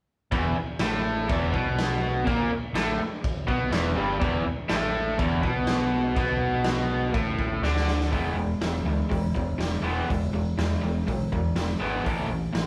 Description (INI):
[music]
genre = garage rock duo or trio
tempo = 123 BPM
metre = 4/4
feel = straight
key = E major from 8.1 s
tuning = A4 = 443 Hz
[part]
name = raw garage guitar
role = riff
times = 0.3-12.7 s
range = E2 to D4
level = -29 LUFS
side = equal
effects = overdrive
[part]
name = overdriven fingered electric bass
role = bass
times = 0.3-12.7 s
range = E1 to E2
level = -33 LUFS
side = equal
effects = tube saturation
[part]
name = raw garage drum kit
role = drums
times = 0.3-12.7 s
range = crash cymbal, hi-hat, kick drum, snare drum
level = -32 LUFS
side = equal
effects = none
[sound]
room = moderate large studio reverb, RT60 1.3 s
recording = band playing live in one room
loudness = -26 LUFS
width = mono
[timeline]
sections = 0.3-8.1 A section; 8.1-12.7 B section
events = drum fill 7.6-8.1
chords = 0.3 E5; 8.1 E; 12.1 A5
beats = | 0.31 0.80 1.28 1.77 | 2.26 2.75 3.23 3.72 | 4.21 4.69 5.18 5.67 | 6.16 6.65 7.14 7.63 | 8.12 8.61 9.10 9.59 | 10.09 10.58 11.07 11.56 | 12.06 12.55